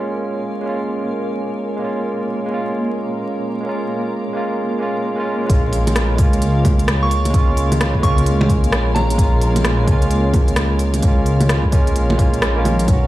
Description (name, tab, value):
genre	future garage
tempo	130 BPM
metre	4/4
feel	swing 63% on 16ths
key	Bb minor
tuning	A4 = 440 Hz
part	barky tine electric piano	accompaniment	0.0-13.1 s	F#3 to F#4	-22 LUFS	right 1 dB	vintage 12-bit sampler grit, sidechain pumping, low-pass filter, tape echo
part	granular cloud pad	sustained chords	0.0-13.1 s	Bb3 to Bb5	-26 LUFS	equal	built-in reverb, sidechain pumping
part	dark detuned saw bass	bass	5.5-13.1 s	Bb1 to Db2	-18 LUFS	equal	sidechain pumping
part	electronic kick drum	drums	5.5-13.0 s	none	-16 LUFS	equal	none
part	organic electronic drum kit	drums	5.5-13.0 s	bongos, hi-hat, rim click	-22 LUFS	right 1 dB	low-pass filter on hats, low-pass filter on perc, low-pass filter on snare, low-pass filter on room
part	soft synth bell	melody	7.0-9.3 s	Bb5 to Db6	-26 LUFS	right 2 dB	chorus, dub echo
room	digital ambience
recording	played on a big sound system in a bare room, large studio reverb, vinyl crackle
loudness	-15 LUFS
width	side -15 dB against mid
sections	0.0-5.5 A section; 5.5-13.1 B section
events	filter sweep on tine electric piano 0.0-5.5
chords	0.0 Bbm7